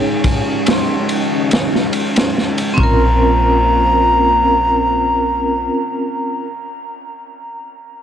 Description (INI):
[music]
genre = trip hop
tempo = 71 BPM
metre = 4/4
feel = straight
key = Bb minor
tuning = A4 = 440 Hz
[part]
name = vibraphone with medium hard mallets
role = accompaniment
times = 0.0-6.4 s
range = C4 to Db5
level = -20 LUFS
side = right 1 dB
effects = tremolo, tape echo
[part]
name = string machine, cellos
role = sustained chords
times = 0.0-6.4 s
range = Ab3 to Db5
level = -20 LUFS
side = equal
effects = ensemble chorus
[part]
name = wind-like tuned noise texture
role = texture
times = 0.0-3.2 s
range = F3 to F4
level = -32 LUFS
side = left 3 dB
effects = none
[part]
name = crunchy breakbeat drum kit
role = drums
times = 0.2-3.0 s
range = kick drum, ride cymbal, snare drum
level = -19 LUFS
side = equal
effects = none
[part]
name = bright wooden flute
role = melody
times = 2.8-6.4 s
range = Bb5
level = -18 LUFS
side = left 1 dB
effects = vintage 12-bit sampler grit, tape echo
[part]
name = soft 808-style bass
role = bass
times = 2.8-5.7 s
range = Bb1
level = -19 LUFS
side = equal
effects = tube saturation
[sound]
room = light reverb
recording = dry, gritty hardware recording, cassette tape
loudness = -13 LUFS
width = side -9 dB against mid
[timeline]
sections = 0.0-3.2 A section; 3.2-6.6 B section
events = none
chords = 0.0 Dbsus2; 2.8 Bbmadd9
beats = 0.67 1.52 2.36 | 3.21 4.05 4.90 5.74